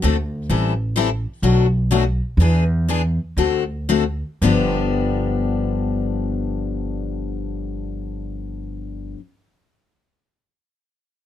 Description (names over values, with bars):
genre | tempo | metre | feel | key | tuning
acoustic string swing (jazz manouche) | 110-130 BPM | 4/4 | swing 65% on 8ths | G mixolydian | A4 = 442 Hz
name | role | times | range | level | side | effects
picked steel-string acoustic guitar | accompaniment | 0.0-9.2 s | G2 to A4 | -21 LUFS | left 6 dB | none
upright bass | bass | 0.0-9.1 s | G1 to E2 | -21 LUFS | right 1 dB | none
room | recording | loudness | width
little or no reverb | close, detailed microphones | -18 LUFS | side -11 dB against mid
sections
0.5-4.4 A section; 4.4-8.8 B section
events
slowing down 0.5-4.4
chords
0.5 Am7; 1.4 Bm7; 2.4 E7; 3.4 D7; 4.4 G7